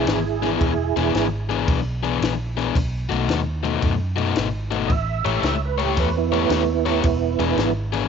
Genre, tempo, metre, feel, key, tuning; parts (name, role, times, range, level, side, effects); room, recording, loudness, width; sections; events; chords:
electric blues shuffle; 112 BPM; 4/4; swing 67% on 8ths; A4 = 440 Hz
tonewheel organ; accompaniment; 0.0-1.3, 4.9-7.7 s; B3 to E5; -23 LUFS; right 15 dB; overdrive, chorus vibrato, slow rotary speaker
crunchy overdriven guitar; riff; 0.0-8.1 s; B2 to C#5; -24 LUFS; left 11 dB
vintage muted fingered electric bass; bass; 0.0-8.1 s; E1 to F#2; -25 LUFS; right 1 dB
compact cocktail drum kit; drums; 0.1-8.0 s; kick drum, ride cymbal, snare drum; -27 LUFS; left 1 dB
light reverb, small room reverb; 1960s-style stereo with parts hard left and right, nothing above 7.6 kHz; -19 LUFS; side -6 dB against mid
0.0-8.1 A section
0.0 E7; 2.8 B7; 4.9 A7; 7.0 E7